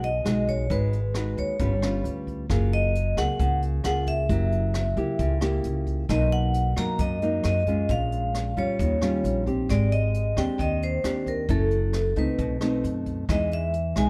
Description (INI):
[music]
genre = bossa nova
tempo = 133 BPM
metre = 4/4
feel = straight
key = unclear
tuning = A4 = 440 Hz
[part]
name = vibraphone with medium hard mallets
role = melody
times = 0.0-14.1 s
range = A4 to A#5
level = -31 LUFS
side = equal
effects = none
[part]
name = nylon-string guitar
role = accompaniment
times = 0.0-14.1 s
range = F#2 to Cb5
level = -31 LUFS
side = equal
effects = none
[part]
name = upright bass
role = bass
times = 0.0-14.1 s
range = Gb1 to F#2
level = -28 LUFS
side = equal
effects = none
[part]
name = jazz brush drum kit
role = drums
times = 0.0-14.1 s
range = hi-hat, kick drum, rim click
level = -35 LUFS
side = equal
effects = none
[sound]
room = light reverb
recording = none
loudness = -25 LUFS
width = mono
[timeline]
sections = 0.0-14.1 A section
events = none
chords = 0.0 Emaj9 (rootless); 0.7 Abm7; 1.6 G7#11; 2.5 Gbmaj9; 4.3 Gb7b9; 6.1 Bmaj7; 7.9 Bbm7; 8.8 Eb9; 9.7 Abmaj7#11; 11.5 Gbm7; 12.4 B7b9; 13.3 Emaj7